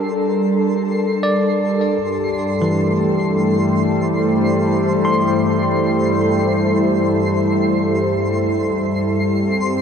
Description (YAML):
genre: ambient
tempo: 78 BPM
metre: 4/4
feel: straight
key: unclear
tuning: A4 = 440 Hz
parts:
  - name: airy breathy pad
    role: sustained chords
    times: 0.0-9.8 s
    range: G2 to C5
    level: -18 LUFS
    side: equal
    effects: chorus, shimmer reverb
  - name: analog drone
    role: drone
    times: 0.0-9.8 s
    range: G3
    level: -21 LUFS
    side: equal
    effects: chorus
  - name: twinkling granular texture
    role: texture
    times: 0.0-9.8 s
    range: C6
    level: -28 LUFS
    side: right 1 dB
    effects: built-in reverb, shimmer reverb
  - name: bell-like tine electric piano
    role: arpeggios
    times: 1.2-9.8 s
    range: E3 to C6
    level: -23 LUFS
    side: equal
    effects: ping-pong delay
room: wet huge ambient reverb, RT60 8.4 s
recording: worn, warbling old tape, cassette tape, warbly pitch drift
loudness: -15 LUFS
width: side -7 dB against mid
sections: 0.0-9.8 A section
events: fade-in on synth texture 0.0-9.8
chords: 0.0 Gmadd9; 2.0 C69/G